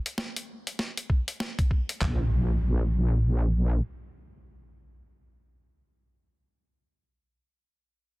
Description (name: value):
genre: glitch hop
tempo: 98 BPM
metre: 4/4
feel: swing 60% on 16ths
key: unclear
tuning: A4 = 440 Hz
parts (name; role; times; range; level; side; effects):
- boom bap sampler-style drum kit; drums; 0.1-2.0 s; hi-hat, snare drum; -33 LUFS; equal; none
- boom bap sampler-style drum kit; drums; 1.1-2.2 s; handclaps, kick drum, toms; -25 LUFS; equal; none
- wobble bass; bass; 2.0-3.8 s; Bb1; -23 LUFS; equal; chorus
- impact; sound effects; 2.0-6.0 s; none; -38 LUFS; equal; none
room: digital ambience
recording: dense, heavily limited modern master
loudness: -25 LUFS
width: side -22 dB against mid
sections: 0.0-2.0 A section; 2.0-4.5 B section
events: none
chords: none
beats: 0.17 0.79 1.40 | 2.01 2.62 3.24 3.85